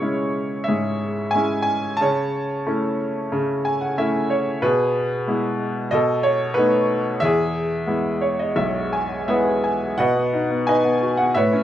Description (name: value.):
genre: classical, lyrical solo piano.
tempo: 84-93 BPM.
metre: 4/4.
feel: rubato.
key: E major.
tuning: A4 = 440 Hz.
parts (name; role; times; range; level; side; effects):
bright upright piano; solo; 0.0-11.6 s; B1 to A5; -19 LUFS; equal; none.
room: light reverb.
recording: dark, warm production.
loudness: -19 LUFS.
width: side -11 dB against mid.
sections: 0.0-10.0 A section; 10.0-11.6 B section.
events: upright piano fill 3.3-4.6, 7.9-10.0.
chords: 0.0 C#m; 2.0 A/C#; 4.6 E/B; 5.9 B7; 7.2 E; 10.0 B.